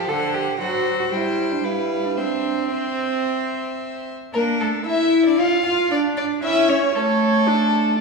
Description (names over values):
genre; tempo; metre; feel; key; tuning
quick classical-period movement for string quartet; 113 BPM; 4/4; uneven beats; C major, D minor from 4.3 s; A4 = 440 Hz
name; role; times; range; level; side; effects
rich violin; melody; 0.0-8.0 s; A4 to G5; -28 LUFS; left 7 dB; none
rich violin; second line; 0.0-8.0 s; A4 to F5; -25 LUFS; left 2 dB; none
warm viola; accompaniment; 0.0-8.0 s; D3 to C#5; -23 LUFS; right 1 dB; none
dark cello; bass; 0.0-8.0 s; A3 to A4; -22 LUFS; right 2 dB; none
room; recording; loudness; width
wet scoring stage reverb, RT60 1.6 s; recorded in a church or concert hall, studio reverb; -18 LUFS; side -3 dB against mid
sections
0.0-4.3 A section; 4.3-8.0 B section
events
none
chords
0.1 D7; 1.1 C/G; 2.2 C; 4.3 Dm; 6.4 A/C#; 7.5 D5/A